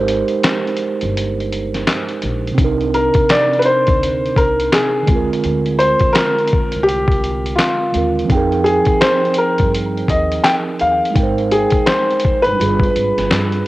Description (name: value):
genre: lo-fi hip hop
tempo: 84 BPM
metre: 4/4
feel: swing 62% on 16ths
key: unclear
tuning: A4 = 441 Hz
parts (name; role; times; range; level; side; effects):
- mellow tine electric piano; accompaniment; 0.0-13.7 s; C3 to G5; -19 LUFS; right 4 dB; medium stereo tremolo, low-pass filter, cassette tape
- upright bass; bass; 0.0-13.6 s; G1 to G2; -23 LUFS; left 1 dB; none
- lo-fi sampler-style drum kit; drums; 0.1-13.6 s; handclaps, hi-hat, kick drum, snare drum; -18 LUFS; left 1 dB; cassette tape
- felt-muted upright piano; melody; 2.9-13.6 s; F4 to G5; -16 LUFS; left 1 dB; low-pass filter, cassette tape, analog delay
room: moderate spring reverb, RT60 2.4 s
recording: home recording on cassette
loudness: -13 LUFS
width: side -17 dB against mid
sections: 0.0-13.7 A section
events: break 0.0-2.6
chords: 0.0 Abmaj7; 2.6 Cm9; 5.1 Bb9/D; 8.3 Fm11; 11.2 Abmaj7; 12.6 G7b9